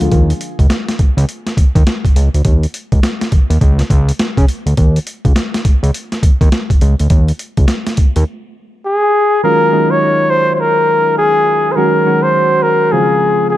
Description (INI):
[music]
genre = R&B, new jack swing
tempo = 103 BPM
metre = 4/4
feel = swing 62% on 16ths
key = unclear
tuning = A4 = 443 Hz
[part]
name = soft electric-piano-like synth keys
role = accompaniment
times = 0.0-0.1, 9.4-13.6 s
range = Db3 to Gb4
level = -16 LUFS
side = right 1 dB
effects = chorus
[part]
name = fat analog bass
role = bass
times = 0.0-8.2 s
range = Db2 to Db3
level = -12 LUFS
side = equal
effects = none
[part]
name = boom bap sampler-style drum kit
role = drums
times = 0.0-8.3 s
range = hi-hat, kick drum, snare drum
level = -13 LUFS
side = equal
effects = overdrive
[part]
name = breathy flugelhorn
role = melody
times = 8.9-13.6 s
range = Ab4 to Db5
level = -11 LUFS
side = left 1 dB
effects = tape echo
[sound]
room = light reverb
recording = dark, warm production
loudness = -11 LUFS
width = side -14 dB against mid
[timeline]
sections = 0.1-9.4 A section; 9.4-13.6 B section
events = break 8.3-9.4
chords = 0.1 Dbsus2; 3.6 N.C.; 4.8 Dbsus2; 8.3 N.C.; 9.4 Ebm11; 11.8 Ab7sus4/Eb; 12.9 Dbmaj7